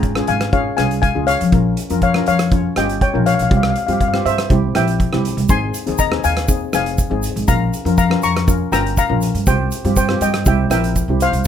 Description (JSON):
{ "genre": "calypso", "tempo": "121 BPM", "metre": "4/4", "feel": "straight", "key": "unclear", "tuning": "A4 = 441 Hz", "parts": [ { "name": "steel pan", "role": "melody", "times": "0.0-11.5 s", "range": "C5 to Db6", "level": "-20 LUFS", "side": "left 3 dB", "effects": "none" }, { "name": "steel pan", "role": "accompaniment", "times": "0.0-11.3 s", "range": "C4 to Db5", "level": "-23 LUFS", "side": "left 2 dB", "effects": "none" }, { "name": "upright bass", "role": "bass", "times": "0.0-11.4 s", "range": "F1 to G2", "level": "-19 LUFS", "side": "equal", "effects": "none" }, { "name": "loose indie drum kit", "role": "drums", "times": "0.0-11.4 s", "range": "hi-hat, kick drum, rim click", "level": "-21 LUFS", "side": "right 1 dB", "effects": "none" }, { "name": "egg shaker", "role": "percussion", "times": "5.5-11.5 s", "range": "none", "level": "-28 LUFS", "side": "right 3 dB", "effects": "none" } ], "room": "light reverb", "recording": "none", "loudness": "-14 LUFS", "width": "side -9 dB against mid", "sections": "0.0-11.5 A section", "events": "none", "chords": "0.0 Db; 1.5 Bbm; 3.5 Csus4; 4.5 C; 5.5 Ab; 7.5 Bbm; 9.5 Csus4; 10.5 C7", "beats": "0.04 0.53 1.03 | 1.52 2.02 2.52 3.01 | 3.51 4.00 4.50 5.00 | 5.49 5.99 6.49 6.98 | 7.48 7.98 8.47 8.97 | 9.47 9.96 10.46 10.96 | 11.46" }